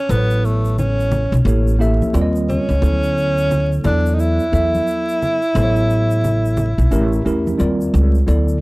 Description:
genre	hip hop, jazz-hop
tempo	88 BPM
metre	4/4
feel	swing 61% on 16ths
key	unclear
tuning	A4 = 440 Hz
part	breathy tenor saxophone	melody	0.0-7.6 s	A3 to E4	-20 LUFS	equal	analog delay
part	mellow tine electric piano	accompaniment	0.1-8.6 s	F3 to E5	-21 LUFS	equal	medium stereo tremolo
part	upright bass	bass	0.1-8.6 s	A1 to E2	-17 LUFS	equal	transformer saturation
part	egg shaker and congas	percussion	0.1-8.6 s	none	-28 LUFS	equal	none
room	light reverb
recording	dry, gritty hardware recording, vinyl crackle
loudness	-14 LUFS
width	side -22 dB against mid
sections	0.0-8.3 A section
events	none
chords	0.1 A; 1.5 A7b9; 2.1 D#; 2.8 Dmaj7; 3.8 E9sus4; 5.6 A; 6.9 A7b9; 7.6 D#maj7

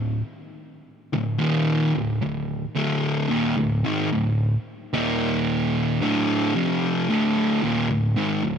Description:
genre	metal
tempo	55 BPM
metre	4/4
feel	straight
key	unclear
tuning	A4 = 439 Hz
part	fuzz guitar	solo	0.0-8.6 s	D2 to F3	-21 LUFS	equal	distortion
room	light reverb, digital ambience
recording	none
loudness	-21 LUFS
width	side -7 dB against mid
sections	0.0-8.6 A section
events	none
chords	0.0 D5; 4.9 Eb5; 6.0 Dm

